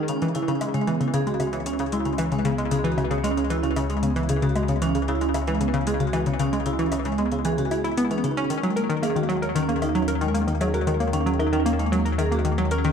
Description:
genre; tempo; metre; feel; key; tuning
ambient, sequencer-driven space music; 114 BPM; 4/4; straight; C# dorian; A4 = 440 Hz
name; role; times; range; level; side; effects
vibraphone with medium hard mallets; arpeggios; 0.0-12.8 s; G#3 to C#5; -26 LUFS; right 4 dB; auto-pan, ping-pong delay
analog pluck; riff; 0.0-12.9 s; C#3 to A#4; -24 LUFS; left 2 dB; chorus, ping-pong delay
round analog bass; bass; 0.0-12.9 s; C#2 to D#2; -29 LUFS; equal; none
electronic hi-hat and woodblock; percussion; 0.1-12.9 s; none; -37 LUFS; left 5 dB; ping-pong delay
room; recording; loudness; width
wet echo chamber reverb, RT60 2.2 s; echo-heavy mix; -21 LUFS; side -7 dB against mid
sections
0.0-12.9 A section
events
none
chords
0.1 C#m; 8.5 D#m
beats
| 0.08 0.61 1.14 1.66 | 2.19 2.72 3.24 3.77 | 4.29 4.82 5.35 5.87 | 6.40 6.93 7.45 7.98 | 8.51 9.03 9.56 10.08 | 10.61 11.14 11.66 12.19 | 12.72

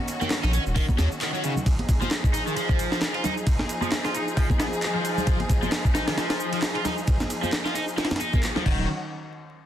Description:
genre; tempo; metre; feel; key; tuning
breakbeat, breaks; 133 BPM; 4/4; swing 56% on 16ths; unclear; A4 = 440 Hz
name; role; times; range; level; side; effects
clear studio string section; sustained chords; 0.0-8.9 s; Eb3 to Ab4; -31 LUFS; equal; sidechain pumping
breakbeat sampler-style drum kit; drums; 0.1-8.8 s; crash cymbal, hi-hat, kick drum, ride cymbal, snare drum; -25 LUFS; equal; small room ambience
electronic shaker and handclaps; drums; 0.1-8.5 s; none; -34 LUFS; equal; overdrive, small room ambience
cranked stack guitar; riff; 0.2-8.9 s; Db3 to F4; -29 LUFS; left 1 dB; overdrive, tube saturation, phaser, low-pass filter, dub echo
congas; percussion; 0.2-8.9 s; none; -33 LUFS; right 2 dB; none
saturated sub bass; bass; 0.4-1.1, 8.7-8.9 s; Eb1 to Eb2; -24 LUFS; equal; none
room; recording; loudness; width
light reverb; dense, heavily limited modern master, vinyl crackle; -22 LUFS; side -11 dB against mid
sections
0.0-8.9 A section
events
none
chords
0.0 Ebm7; 1.7 Fm7; 8.7 Ebm7; 8.9 N.C.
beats
0.31 0.76 1.21 | 1.66 2.11 2.56 3.02 | 3.47 3.92 4.37 4.82 | 5.27 5.72 6.17 6.62 | 7.08 7.53 7.98 8.43

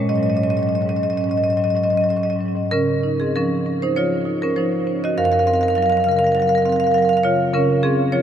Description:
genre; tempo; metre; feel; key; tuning
classical, contemporary piece for solo marimba; 90-103 BPM; 4/4; rubato; Db major; A4 = 440 Hz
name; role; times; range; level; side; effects
marimba with medium hard mallets; solo; 0.0-8.2 s; Gb2 to F5; -16 LUFS; equal; none
room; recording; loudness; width
wet huge ambient reverb, RT60 8.7 s; in a vast, echoing space; -16 LUFS; side -9 dB against mid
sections
0.0-2.7 A section; 2.7-8.2 B section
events
none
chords
0.1 Ab7sus4; 2.7 Dbmaj9; 5.2 Gbmaj7#11; 7.5 Db6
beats
| 0.10 0.76 1.42 2.07 | 2.71 3.34 3.95 4.55 | 5.16 5.76 6.36 6.95 | 7.54 8.13

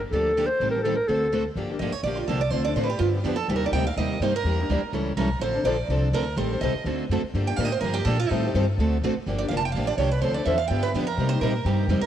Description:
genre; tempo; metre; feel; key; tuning
acoustic string swing (jazz manouche); 250 BPM; 4/4; swing 56% on 8ths; G minor; A4 = 442 Hz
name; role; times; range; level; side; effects
upright bass; bass; 0.0-12.0 s; F1 to C3; -26 LUFS; left 1 dB; none
clear clarinet; melody; 0.1-1.5 s; A4 to C5; -24 LUFS; equal; cassette tape
picked steel-string acoustic guitar; accompaniment; 0.1-12.0 s; C3 to A4; -30 LUFS; left 7 dB; cassette tape
picked steel-string acoustic guitar; accompaniment; 0.1-12.0 s; C3 to Bb4; -30 LUFS; right 6 dB; cassette tape
picked steel-string acoustic guitar; second line; 1.8-12.1 s; Eb4 to A5; -28 LUFS; right 6 dB; cassette tape
room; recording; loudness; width
light reverb, small room ambience; home recording on cassette; -22 LUFS; side -10 dB against mid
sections
0.0-1.6 A section; 1.6-9.3 B section; 9.3-12.1 B section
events
steel-string acoustic guitar solo 1.6-12.1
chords
0.0 Gm9; 0.6 Am7b5; 1.1 D7; 1.6 Gm9; 2.5 Dm7; 3.0 G7; 3.5 Cm7; 4.5 Em7b5; 4.9 A7; 5.4 Dm7; 6.4 Am7b5; 6.9 D7; 7.3 Gm9; 8.3 Am7b5; 8.8 D7; 9.3 Gm9; 10.2 Dm7; 10.7 G7; 11.2 Cm7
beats
0.12 0.36 | 0.60 0.84 1.08 1.32 | 1.57 1.81 2.05 2.29 | 2.53 2.77 3.01 3.25 | 3.49 3.73 3.97 4.21 | 4.45 4.69 4.93 5.17 | 5.41 5.65 5.89 6.13 | 6.38 6.62 6.86 7.10 | 7.34 7.58 7.82 8.06 | 8.30 8.54 8.78 9.02 | 9.26 9.50 9.74 9.98 | 10.22 10.46 10.70 10.94 | 11.18 11.42 11.66 11.90

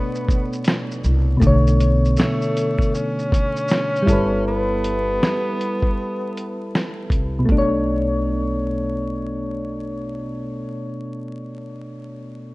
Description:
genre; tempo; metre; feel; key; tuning
lo-fi hip hop; 79 BPM; 4/4; swing 63% on 16ths; B minor; A4 = 444 Hz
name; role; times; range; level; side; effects
breathy tenor saxophone; melody; 0.0-6.7 s; A3 to C#4; -25 LUFS; equal; low-pass filter
soft electric-piano-like synth keys; accompaniment; 0.0-12.5 s; B2 to C#5; -22 LUFS; equal; chorus, cassette tape, low-pass filter
deep dark ambient pad; sustained chords; 0.0-1.4 s; D3 to B3; -39 LUFS; right 2 dB; none
lo-fi sampler-style drum kit; drums; 0.2-7.7 s; hi-hat, kick drum, shaker, snare drum; -21 LUFS; equal; none
upright bass; bass; 1.0-10.6 s; G1 to C2; -22 LUFS; equal; none
room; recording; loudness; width
light reverb, digital ambience; rough home demo mix, vinyl crackle, nothing above 11.0 kHz; -18 LUFS; side -21 dB against mid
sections
0.0-1.4 A section; 1.4-7.5 B section; 7.5-10.5 C section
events
none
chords
0.0 Bm9; 4.1 G69; 7.5 Bm9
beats
0.65 | 1.41 2.17 2.93 3.69 | 4.45 5.21 5.97 6.73 | 7.49 8.25 9.01 9.77

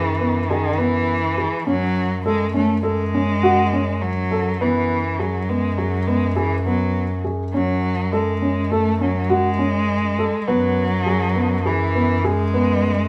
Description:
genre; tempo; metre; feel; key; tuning
contemporary instrumental, chamber music in an uneven meter; 102 BPM; 5/4; straight; unclear; A4 = 440 Hz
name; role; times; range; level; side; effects
warm cello; second line; 0.0-13.1 s; D#3 to A3; -24 LUFS; equal; none
dark baby grand piano; arpeggios; 0.0-12.9 s; B3 to A4; -24 LUFS; equal; none
clear bass clarinet; bass; 0.0-13.1 s; F#2; -26 LUFS; equal; none
room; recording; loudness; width
moderate studio reverb, RT60 0.9 s; heard from further back in the room; -20 LUFS; mono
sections
0.0-13.1 A section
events
none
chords
0.0 Eadd9/F#; 1.7 F#madd9; 4.6 Eadd9/F#; 7.5 F#madd9; 10.5 Eadd9/F#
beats
0.49 1.08 | 1.67 2.26 2.85 3.43 4.02 | 4.61 5.20 5.79 6.37 6.96 | 7.55 8.14 8.72 9.31 9.90 | 10.49 11.07 11.66 12.25 12.83

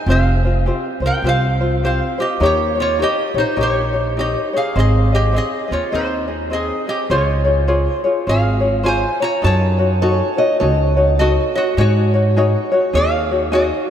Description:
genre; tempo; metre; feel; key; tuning
Hawaiian; 102 BPM; 4/4; swing 61% on 8ths; Ab major, Db major from 7.1 s; A4 = 440 Hz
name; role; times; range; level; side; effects
tenor ukulele; accompaniment; 0.0-13.9 s; C4 to Eb5; -19 LUFS; left 2 dB; none
lap resonator guitar; melody; 0.1-13.9 s; Eb4 to Bb5; -20 LUFS; right 1 dB; none
upright bass; bass; 0.1-13.7 s; F1 to Ab2; -17 LUFS; right 1 dB; none
fingerpicked old ladder-braced acoustic guitar; second line; 10.0-11.0 s; Db5 to Eb5; -25 LUFS; right 2 dB; none
room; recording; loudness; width
wet cathedral reverb, RT60 6.5 s; in a vast, echoing space; -14 LUFS; side -9 dB against mid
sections
0.0-7.1 A section; 7.1-13.9 B section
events
none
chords
0.1 Fsus2; 2.4 Eb7; 4.8 Ab; 7.1 Dbmaj7; 9.4 Gbm6; 11.8 Ab7sus4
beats
| 0.06 0.65 1.24 1.82 | 2.41 3.00 3.59 4.17 | 4.76 5.35 5.93 6.52 | 7.10 7.69 8.27 8.86 | 9.44 10.03 10.61 11.19 | 11.78 12.36 12.94 13.53

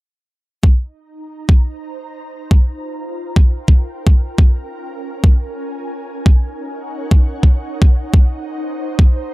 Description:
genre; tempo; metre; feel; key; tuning
UK garage, two-step garage; 128 BPM; 4/4; swing 64% on 16ths; C minor; A4 = 440 Hz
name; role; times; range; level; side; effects
electronic kick drum; drums; 0.6-9.1 s; none; -10 LUFS; equal; overdrive
ethereal airy pad; texture; 1.1-9.3 s; Db4 to Bb5; -28 LUFS; equal; ensemble chorus, built-in reverb, sidechain pumping
room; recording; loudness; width
little or no reverb; none; -13 LUFS; side -20 dB against mid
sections
0.6-9.3 A section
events
fade-in on ambient pad 0.6-9.3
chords
0.6 Cm7; 2.5 Gm7; 4.4 Bbm7; 6.3 Ebm7; 8.1 Cm7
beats
| 0.64 1.10 1.57 2.04 | 2.51 2.98 3.45 3.92 | 4.39 4.86 5.32 5.79 | 6.26 6.73 7.20 7.67 | 8.14 8.61 9.07

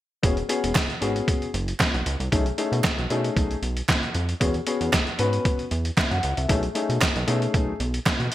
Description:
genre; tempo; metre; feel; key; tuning
early-eighties boogie funk; 115 BPM; 4/4; straight; E major; A4 = 440 Hz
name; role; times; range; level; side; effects
dark baby grand piano; accompaniment; 0.2-7.7 s; A3 to F#5; -27 LUFS; left 4 dB; none
chorused synth bass; bass; 0.2-8.3 s; E1 to B2; -26 LUFS; right 1 dB; none
trip hop sampler-style drum kit; drums; 0.2-8.3 s; hi-hat, kick drum, snare drum; -24 LUFS; equal; overdrive, gated reverb
group handclap; percussion; 0.8-8.2 s; none; -32 LUFS; right 5 dB; none
room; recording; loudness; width
moderate plate reverb, RT60 1.0 s, small room ambience; bright 1980s-style digital production; -21 LUFS; side -14 dB against mid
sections
0.2-8.3 A section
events
none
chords
0.2 E69; 2.3 B13; 4.4 E69; 6.5 B13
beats
| 0.23 0.76 1.28 1.80 | 2.32 2.84 3.36 3.89 | 4.41 4.93 5.45 5.97 | 6.49 7.02 7.54 8.06

